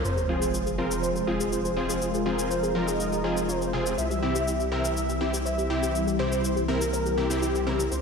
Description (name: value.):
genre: progressive house.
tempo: 122 BPM.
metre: 4/4.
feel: straight.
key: F minor.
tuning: A4 = 438 Hz.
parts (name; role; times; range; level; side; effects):
wide unison lead; melody; 0.0-8.0 s; G4 to E5; -29 LUFS; equal; ping-pong delay.
filtered supersaw swell; sustained chords; 0.0-8.0 s; E3 to Bb4; -30 LUFS; left 1 dB; lush chorus.
analog pluck; arpeggios; 0.0-8.0 s; E4 to C5; -34 LUFS; equal; chorus, ping-pong delay.
round analog bass; bass; 0.0-8.0 s; F1 to Db2; -33 LUFS; equal; none.
sub drop; sound effects; 0.0-2.0 s; none; -33 LUFS; equal; none.
shaker; drums; 0.1-8.0 s; none; -37 LUFS; left 3 dB; overdrive.
supersaw stab; stabs; 0.3-7.8 s; C3 to Bb4; -30 LUFS; left 1 dB; low-pass filter, ping-pong delay.
room: wet lush hall reverb, RT60 1.7 s.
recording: dreamy mix soaked in reverb.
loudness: -24 LUFS.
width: side -5 dB against mid.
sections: 0.0-8.0 A section.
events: impact 0.0-2.0.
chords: 0.0 Fm; 4.0 C.